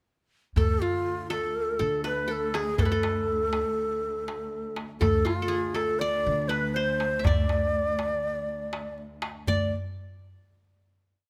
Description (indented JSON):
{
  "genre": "Turkish makam ensemble",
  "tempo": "242 BPM (eighths)",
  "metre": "9/8",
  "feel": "straight",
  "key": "D makam nikriz",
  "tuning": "A4 = 440 Hz",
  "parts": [
    { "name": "breathy reedy low ney", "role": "melody", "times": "0.6-9.7 s", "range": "F4 to D5", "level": "-30 LUFS", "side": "equal", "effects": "none" },
    { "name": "qanun", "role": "second line", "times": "0.6-9.7 s", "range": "F4 to E5", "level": "-35 LUFS", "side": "equal", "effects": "none" },
    { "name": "upright bass", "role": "bass", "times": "0.6-9.7 s", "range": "D2 to D3", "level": "-32 LUFS", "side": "equal", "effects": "none" },
    { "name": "warm studio cello section", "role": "drone", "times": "0.6-9.5 s", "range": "D2", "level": "-40 LUFS", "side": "equal", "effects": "none" },
    { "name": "darbuka", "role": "percussion", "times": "0.6-9.7 s", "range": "none", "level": "-32 LUFS", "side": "equal", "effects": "none" }
  ],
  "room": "light reverb",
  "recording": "close, detailed microphones",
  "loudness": "-28 LUFS",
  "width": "mono",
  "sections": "0.6-9.5 A section; 9.5-11.3 final note",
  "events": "none",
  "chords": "none",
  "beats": "| 0.57 0.82 1.06 1.31 1.56 1.80 2.05 2.30 2.54 | 2.79 3.04 3.29 3.54 3.78 4.03 4.28 4.53 4.77 | 5.02 5.27 5.52 5.76 6.01 6.26 6.51 6.76 7.00 | 7.25 7.50 7.75 8.00 8.24 8.49 8.74 8.98 9.23 | 9.48"
}